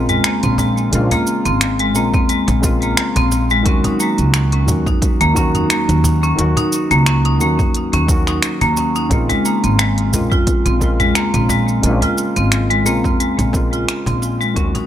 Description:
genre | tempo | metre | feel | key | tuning
organic downtempo | 88 BPM | 4/4 | swing 55% on 16ths | Bb minor | A4 = 439 Hz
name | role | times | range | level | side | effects
felt-muted upright piano | accompaniment | 0.0-14.9 s | Db3 to Gb4 | -22 LUFS | left 2 dB | sidechain pumping, tape echo
marimba with hard mallets | arpeggios | 0.0-14.9 s | Ab3 to F4 | -18 LUFS | equal | tape echo
upright bass | bass | 0.0-14.7 s | Ab1 to Eb2 | -18 LUFS | equal | tube saturation
deep house drum kit | drums | 0.1-14.9 s | finger snaps, hi-hat, shaker, toms | -21 LUFS | right 1 dB | none
cajon | percussion | 0.6-14.9 s | none | -24 LUFS | left 1 dB | none
electronic kick drum | drums | 2.1-14.7 s | none | -18 LUFS | equal | none
room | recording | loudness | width
studio ambience | dry, gritty hardware recording | -13 LUFS | side -11 dB against mid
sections
0.0-14.9 A section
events
fade-out 12.7-14.9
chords
0.0 Bbm9; 3.7 Ebm7; 9.1 Bbm9

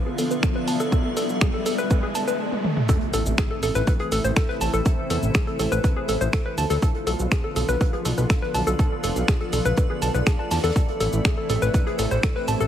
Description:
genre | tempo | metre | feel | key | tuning
melodic techno | 122 BPM | 4/4 | straight | A harmonic minor | A4 = 440 Hz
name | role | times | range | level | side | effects
lush unison pad | sustained chords | 0.0-12.7 s | C3 to F4 | -31 LUFS | equal | chorus, sidechain pumping
riser and impact | sound effects | 0.0-4.9 s | none | -32 LUFS | right 2 dB | none
granular cloud pad | texture | 0.1-12.7 s | B3 to E5 | -31 LUFS | equal | built-in reverb, sidechain pumping
warbly dusty pluck | arpeggios | 0.1-12.7 s | G#4 to A5 | -27 LUFS | left 1 dB | chorus, cassette tape, sidechain pumping, dub echo
punchy analog drum machine | drums | 0.2-12.7 s | finger snaps, hi-hat, shaker, toms | -28 LUFS | equal | sidechain pumping on perc, sidechain pumping on hats, sidechain pumping on toms
electronic kick drum | drums | 0.4-12.3 s | none | -22 LUFS | equal | none
loose indie drum kit | drums | 2.9-12.7 s | hi-hat, snare drum | -42 LUFS | right 2 dB | none
fat analog bass | bass | 3.1-12.7 s | F1 to E2 | -24 LUFS | equal | sidechain pumping
room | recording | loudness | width
light reverb | heavily compressed radio sound | -20 LUFS | side -10 dB against mid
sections
0.0-2.9 A section; 2.9-12.7 B section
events
build-up 0.0-2.9; riser 0.0-2.9; filter sweep on synth arpeggio sound 0.0-2.9; drum fill 2.5-2.9; drop 2.9-12.7; impact 2.9-4.9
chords
0.0 Bdim; 2.9 Am; 6.8 Bdim; 10.8 Am

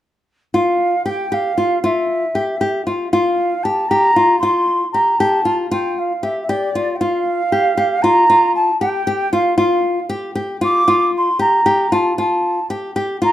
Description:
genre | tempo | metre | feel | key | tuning
contemporary instrumental, contemporary | 232 BPM (eighths) | 5/8 | straight | unclear | A4 = 440 Hz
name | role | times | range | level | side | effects
mellow jazz flute | melody | 0.5-13.3 s | D5 to D6 | -16 LUFS | right 1 dB | none
nylon-string guitar | arpeggios | 0.5-13.3 s | F4 to G4 | -18 LUFS | left 2 dB | none
room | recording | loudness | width
light reverb | close, detailed microphones | -14 LUFS | side -12 dB against mid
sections
0.5-5.7 A section; 5.7-13.3 B section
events
none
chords
0.5 Fsus2

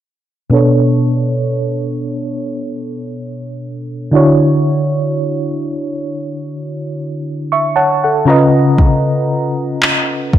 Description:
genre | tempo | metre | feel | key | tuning
contemporary R&B | 58 BPM | 4/4 | swing 54% on 16ths | B minor | A4 = 440 Hz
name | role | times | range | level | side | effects
FM electric piano with auto-pan | accompaniment | 0.5-10.4 s | B2 to C#6 | -13 LUFS | equal | low-pass filter
smooth R&B drum kit | drums | 8.8-10.4 s | handclaps, kick drum | -12 LUFS | equal | none
room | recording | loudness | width
light reverb | dark, warm production | -12 LUFS | side -11 dB against mid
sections
0.5-10.4 A section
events
filter sweep on FM electric piano 0.5-10.4; FM electric piano fill 7.2-8.8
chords
0.5 Bm7; 4.1 Dmaj7; 8.3 C#7

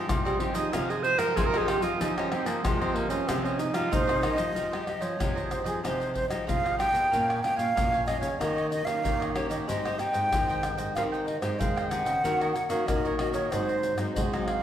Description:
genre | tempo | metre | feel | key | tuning
samba and choro | 94 BPM | 4/4 | straight | F minor | A4 = 437 Hz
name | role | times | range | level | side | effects
cavaquinho | accompaniment | 0.0-14.6 s | Eb4 to Ab5 | -36 LUFS | right 3 dB | none
nylon-string guitar | accompaniment | 0.0-14.6 s | F2 to G4 | -35 LUFS | left 3 dB | none
nylon-string guitar | bass | 0.0-14.6 s | Ab2 to Ab3 | -33 LUFS | equal | none
agogo bells, egg shaker, surdo, pandeiro and tamborim | percussion | 0.1-14.6 s | none | -32 LUFS | left 1 dB | none
breathy tenor saxophone | second line | 0.3-4.4 s | G3 to C5 | -28 LUFS | right 3 dB | none
breathy concert flute | melody | 3.9-14.6 s | Ab4 to G5 | -28 LUFS | right 1 dB | none
room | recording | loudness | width
wet recital hall reverb, RT60 1.6 s | recorded in a church or concert hall | -25 LUFS | side -10 dB against mid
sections
0.0-4.6 A section; 4.6-14.6 B section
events
tenor saxophone solo 0.0-4.6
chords
0.0 Fm9; 7.1 Bbm7; 8.4 Eb7; 9.7 Abmaj7; 12.2 Ebm7; 13.5 Ab7

